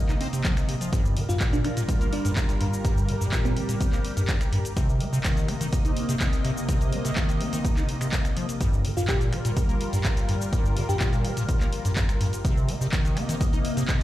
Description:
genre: acid house.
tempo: 125 BPM.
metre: 4/4.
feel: straight.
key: G minor.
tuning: A4 = 441 Hz.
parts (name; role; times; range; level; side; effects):
lush unison pad; sustained chords; 0.0-14.0 s; C3 to Eb5; -31 LUFS; left 1 dB; chorus, phaser, sidechain pumping.
acid bass, square; riff; 0.1-14.0 s; G2 to Eb4; -28 LUFS; equal; tube saturation, wide subtle chorus, sidechain pumping, ping-pong delay.
punchy analog drum machine; drums; 0.1-14.0 s; cabasa, finger snaps, handclaps, hi-hat; -34 LUFS; equal; none.
electronic kick drum; drums; 0.4-14.0 s; none; -25 LUFS; equal; none.
bell-like FM electric piano; melody; 1.3-4.1, 9.0-11.1 s; C4 to G4; -33 LUFS; equal; chorus, phaser, tape echo.
room: light reverb.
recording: played on a big sound system in a bare room, large studio reverb.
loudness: -22 LUFS.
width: side -14 dB against mid.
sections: 0.0-14.0 A section.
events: none.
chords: 0.0 Cm7; 0.9 Gm7; 4.8 Cm7; 8.6 Gm7; 12.4 Cm7.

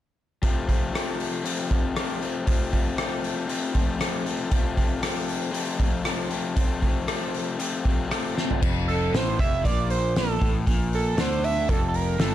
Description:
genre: indie rock.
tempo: 117 BPM.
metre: 4/4.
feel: straight.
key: F major.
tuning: A4 = 442 Hz.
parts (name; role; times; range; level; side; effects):
crunchy overdriven guitar; riff; 0.4-12.3 s; F2 to C4; -28 LUFS; left 4 dB; none.
loose indie drum kit; drums; 0.4-12.3 s; crash cymbal, hi-hat, kick drum, rim click, snare drum, toms; -25 LUFS; equal; none.
fuzz picked electric bass; bass; 8.6-12.3 s; F1 to D2; -27 LUFS; right 1 dB; overdrive.
overdriven synth lead; melody; 8.9-12.3 s; A4 to E5; -27 LUFS; right 5 dB; none.
room: little or no reverb.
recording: dark, warm production.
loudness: -22 LUFS.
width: side -12 dB against mid.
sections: 0.4-8.6 A section; 8.6-12.3 B section.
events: drum fill 8.4.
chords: 0.4 F.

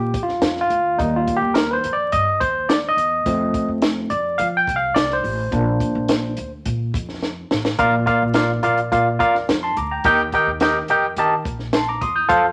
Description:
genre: uptempo 1960s-style soul.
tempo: 106 BPM.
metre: 4/4.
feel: straight.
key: Bb major.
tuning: A4 = 440 Hz.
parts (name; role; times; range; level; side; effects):
barky tine electric piano; accompaniment; 0.0-12.5 s; Bb2 to G6; -20 LUFS; equal; none.
upright bass; bass; 0.0-12.5 s; A1 to F3; -30 LUFS; equal; none.
compact cocktail drum kit; drums; 0.1-12.4 s; hi-hat, kick drum, snare drum; -25 LUFS; equal; none.
room: wet studio reverb, RT60 0.8 s.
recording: vinyl crackle.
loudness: -20 LUFS.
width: mono.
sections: 0.0-7.8 A section; 7.8-12.5 B section.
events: tine electric piano solo 0.0-7.8; drum fill 7.2-7.8.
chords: 0.0 Bb (rootless); 1.0 Eb; 3.3 F; 5.5 Bb; 10.0 Eb.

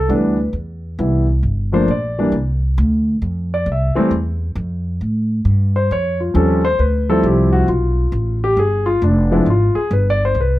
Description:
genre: jazz.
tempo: 135 BPM.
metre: 4/4.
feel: swing 66% on 8ths.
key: unclear.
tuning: A4 = 440 Hz.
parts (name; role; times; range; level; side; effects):
dark concert grand piano; melody; 0.0-10.6 s; E3 to E5; -17 LUFS; left 1 dB; none.
upright bass; bass; 0.0-10.6 s; F1 to A2; -17 LUFS; equal; none.
room: light reverb.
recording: close, detailed microphones.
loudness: -14 LUFS.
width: side -16 dB against mid.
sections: 0.0-10.6 A section.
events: grand piano solo 0.0-10.6.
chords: 0.0 Cmaj7; 1.4 Gm; 2.3 Csus2; 3.2 Fmaj7(no3); 5.0 A7alt; 6.8 Dm11; 8.6 G7(no3).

